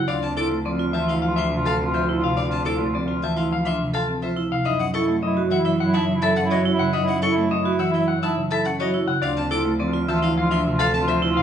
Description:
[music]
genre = classical, minimalist pattern music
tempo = 105 BPM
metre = 4/4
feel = straight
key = unclear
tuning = A4 = 440 Hz
[part]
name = clean electric guitar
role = melody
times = 0.0-11.4 s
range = A4 to A5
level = -27 LUFS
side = left 6 dB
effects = none
[part]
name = marimba with medium mallets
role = accompaniment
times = 0.0-11.4 s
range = C3 to C#4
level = -25 LUFS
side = equal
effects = none
[part]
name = mellow soprano saxophone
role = second line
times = 0.1-11.4 s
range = E4 to F4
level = -28 LUFS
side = right 1 dB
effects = none
[part]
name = rich violin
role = arpeggios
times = 0.1-11.2 s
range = D#5 to D6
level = -30 LUFS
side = left 3 dB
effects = none
[part]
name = vibraphone with hard mallets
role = arpeggios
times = 0.1-11.4 s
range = C4 to A4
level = -26 LUFS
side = right 4 dB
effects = none
[part]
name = clear cello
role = bass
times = 0.1-11.4 s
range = D2 to F#2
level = -28 LUFS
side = right 2 dB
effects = none
[sound]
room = wet large studio reverb, RT60 1.1 s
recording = heard from further back in the room, nothing above 10.7 kHz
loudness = -19 LUFS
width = side -9 dB against mid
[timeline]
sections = 0.0-11.4 A section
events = none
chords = 0.1 Dm7; 4.7 F#m7; 9.2 Dm7

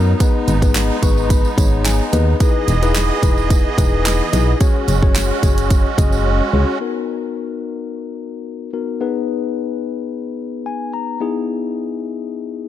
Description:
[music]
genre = dance-pop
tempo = 109 BPM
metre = 4/4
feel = straight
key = B major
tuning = A4 = 438 Hz
[part]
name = mellow tine electric piano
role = accompaniment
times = 0.0-12.7 s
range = B3 to C#6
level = -22 LUFS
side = left 7 dB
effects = sidechain pumping
[part]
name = musette accordion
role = sustained chords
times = 0.0-6.8 s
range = E3 to D#5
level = -23 LUFS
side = right 3 dB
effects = sidechain pumping
[part]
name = solid FM bass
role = bass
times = 0.0-6.6 s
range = E1 to F#2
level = -17 LUFS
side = right 1 dB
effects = sidechain pumping
[part]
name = pop drum kit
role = drums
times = 0.2-6.1 s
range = handclaps, hi-hat, kick drum, snare drum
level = -16 LUFS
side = right 1 dB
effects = none
[part]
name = tambourine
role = percussion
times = 0.2-6.2 s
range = none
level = -32 LUFS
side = right 11 dB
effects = none
[sound]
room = little or no reverb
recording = none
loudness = -15 LUFS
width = side -12 dB against mid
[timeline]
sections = 0.0-6.8 A section; 6.8-12.7 B section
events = tine electric piano fill 0.8-2.4, 10.4-11.2; drums muted 6.3-6.8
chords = 0.2 G#m; 2.4 Emaj7; 4.6 F#sus2; 6.8 Bmaj7; 9.0 G#m; 11.2 Emaj7

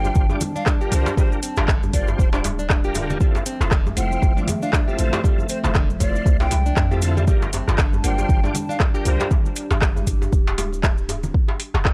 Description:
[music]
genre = afro house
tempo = 118 BPM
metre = 4/4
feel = swing 57% on 16ths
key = G dorian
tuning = A4 = 439 Hz
[part]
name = breathy hollow jazz flute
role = melody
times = 0.0-9.3 s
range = C5 to G5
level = -32 LUFS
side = equal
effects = analog delay
[part]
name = dark analog pad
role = sustained chords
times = 0.0-11.3 s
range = F3 to A5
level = -34 LUFS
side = equal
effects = chorus, phaser, sidechain pumping
[part]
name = nylon-string guitar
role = arpeggios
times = 0.0-9.3 s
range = D3 to G4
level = -33 LUFS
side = equal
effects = sidechain pumping
[part]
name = tonewheel organ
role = stabs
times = 0.0-9.3 s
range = C4 to D5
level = -33 LUFS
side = equal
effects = chorus vibrato, fast rotary speaker, vintage 12-bit sampler grit, sidechain pumping, analog delay
[part]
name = warm 808-style bass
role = bass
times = 0.0-11.9 s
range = D1 to F2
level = -25 LUFS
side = equal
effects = sidechain pumping
[part]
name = cabasa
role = percussion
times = 0.0-11.3 s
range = none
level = -39 LUFS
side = equal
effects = none
[part]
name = djembe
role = percussion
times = 0.0-11.8 s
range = none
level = -31 LUFS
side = equal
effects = none
[part]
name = congas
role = percussion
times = 0.1-11.3 s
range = none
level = -34 LUFS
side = equal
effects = none
[part]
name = electronic kick drum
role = drums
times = 0.2-11.9 s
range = none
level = -21 LUFS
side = equal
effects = none
[part]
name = afro-pop drum kit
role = drums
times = 0.4-11.9 s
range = handclaps, hi-hat, rim click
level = -28 LUFS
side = equal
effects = none
[sound]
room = little or no reverb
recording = dry, gritty hardware recording, cassette tape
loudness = -20 LUFS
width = mono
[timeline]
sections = 0.0-11.9 A section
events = none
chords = 0.0 Gm7; 3.2 Fmaj7; 7.3 Gm7; 11.3 N.C.

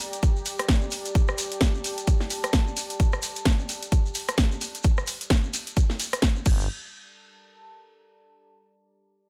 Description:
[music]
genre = bass house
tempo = 130 BPM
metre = 4/4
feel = swing 59% on 16ths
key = G minor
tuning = A4 = 442 Hz
[part]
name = shekere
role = percussion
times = 0.0-6.7 s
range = none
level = -37 LUFS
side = equal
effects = none
[part]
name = deep dark ambient pad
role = texture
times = 0.0-8.5 s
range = G4 to Bb5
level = -40 LUFS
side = equal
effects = chorus, built-in reverb, sidechain pumping
[part]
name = house drum kit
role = drums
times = 0.1-6.6 s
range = crash cymbal, hi-hat, rim click, snare drum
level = -31 LUFS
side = equal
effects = none
[part]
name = electronic kick drum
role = drums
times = 0.2-6.6 s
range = none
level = -24 LUFS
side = equal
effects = none
[part]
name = growling FM bass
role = bass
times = 6.5-6.7 s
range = G1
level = -30 LUFS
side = equal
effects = tube saturation, sidechain pumping
[sound]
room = digital ambience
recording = none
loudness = -25 LUFS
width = mono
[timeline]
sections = 0.0-6.7 A section; 6.7-8.5 B section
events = fade-out on ambient pad 0.0-6.7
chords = 0.0 G5; 6.7 Gm

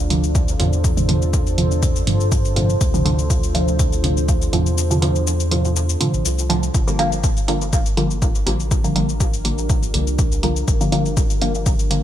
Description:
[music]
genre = dub techno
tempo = 122 BPM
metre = 4/4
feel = swing 54% on 16ths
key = G minor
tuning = A4 = 440 Hz
[part]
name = deep dark ambient pad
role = sustained chords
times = 0.0-12.0 s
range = D4 to C5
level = -26 LUFS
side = equal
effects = chorus, built-in reverb, sidechain pumping
[part]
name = soft dub sub bass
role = bass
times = 0.0-12.0 s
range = G1 to G2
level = -22 LUFS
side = equal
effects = sidechain pumping
[part]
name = filtered dub chord stab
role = stabs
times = 0.1-12.0 s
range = A2 to Bb3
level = -22 LUFS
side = right 1 dB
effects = chorus, phaser, dub echo
[part]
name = electronic hi-hat and cabasa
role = drums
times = 0.1-12.0 s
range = none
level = -27 LUFS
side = left 2 dB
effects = none
[part]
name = electronic kick drum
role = drums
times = 0.3-11.8 s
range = none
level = -20 LUFS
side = equal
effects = none
[sound]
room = light reverb, digital ambience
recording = bright 1980s-style digital production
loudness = -16 LUFS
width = side -11 dB against mid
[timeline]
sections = 0.0-12.0 A section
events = kick drops out 4.8-6.7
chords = 0.0 Dm7; 6.7 Gm7

